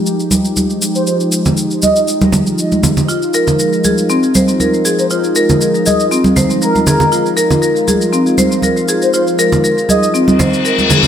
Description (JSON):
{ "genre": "afro house", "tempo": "119 BPM", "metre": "4/4", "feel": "swing 54% on 16ths", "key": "F minor", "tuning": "A4 = 439 Hz", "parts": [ { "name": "warm analog pad", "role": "sustained chords", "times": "0.0-11.1 s", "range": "F3 to G4", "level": "-17 LUFS", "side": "equal", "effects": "chorus" }, { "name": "shaker", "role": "drums", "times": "0.1-11.1 s", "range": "none", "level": "-21 LUFS", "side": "left 1 dB", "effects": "overdrive" }, { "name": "congas", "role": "percussion", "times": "0.3-11.1 s", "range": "none", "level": "-15 LUFS", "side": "right 2 dB", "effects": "none" }, { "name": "expressive synth lead", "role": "melody", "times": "1.0-10.1 s", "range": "Bb4 to Eb5", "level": "-18 LUFS", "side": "equal", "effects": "lush chorus, dub echo" }, { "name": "marimba with medium hard mallets", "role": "arpeggios", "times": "3.1-11.0 s", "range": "C4 to C5", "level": "-14 LUFS", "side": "left 1 dB", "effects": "dub echo" }, { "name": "reverse cymbal", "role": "sound effects", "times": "10.4-11.1 s", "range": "none", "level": "-14 LUFS", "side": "left 7 dB", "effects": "none" } ], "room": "light reverb", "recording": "none", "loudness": "-10 LUFS", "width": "side -9 dB against mid", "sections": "0.0-11.1 A section", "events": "filter sweep on analog synth pad 0.0-11.1; reverse cymbal 10.4-11.1", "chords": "0.0 Fm9" }